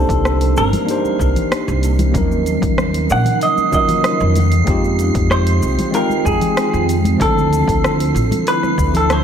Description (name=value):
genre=sunset chillout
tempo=95 BPM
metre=4/4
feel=straight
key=unclear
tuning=A4 = 442 Hz
part: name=clean electric guitar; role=melody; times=0.0-9.2 s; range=Ab4 to Gb5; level=-19 LUFS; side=right 1 dB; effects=ping-pong delay
part: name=tine electric piano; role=accompaniment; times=0.0-9.2 s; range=F3 to G5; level=-21 LUFS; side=equal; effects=auto-pan, tape echo
part: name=ethereal airy pad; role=sustained chords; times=0.0-9.2 s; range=Db3 to G5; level=-23 LUFS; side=right 1 dB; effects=ensemble chorus, built-in reverb, phaser
part: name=upright bass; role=bass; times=0.0-9.2 s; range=G1 to F2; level=-17 LUFS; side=equal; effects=none
part: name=wind-like tuned noise texture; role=texture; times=0.8-9.2 s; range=C7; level=-29 LUFS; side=right 6 dB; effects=built-in reverb
part: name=deep house drum kit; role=drums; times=0.1-9.2 s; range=hi-hat, rim click, shaker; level=-24 LUFS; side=equal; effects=overdrive
part: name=electronic kick drum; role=drums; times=0.1-8.9 s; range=none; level=-21 LUFS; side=equal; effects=overdrive
part: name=congas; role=percussion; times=0.7-9.1 s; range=none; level=-25 LUFS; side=left 1 dB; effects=none
room=light reverb, digital ambience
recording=none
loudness=-13 LUFS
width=side -8 dB against mid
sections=0.0-9.2 A section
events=none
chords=0.0 Cm9; 2.1 Ebm9; 4.4 Fm9; 7.2 Dm9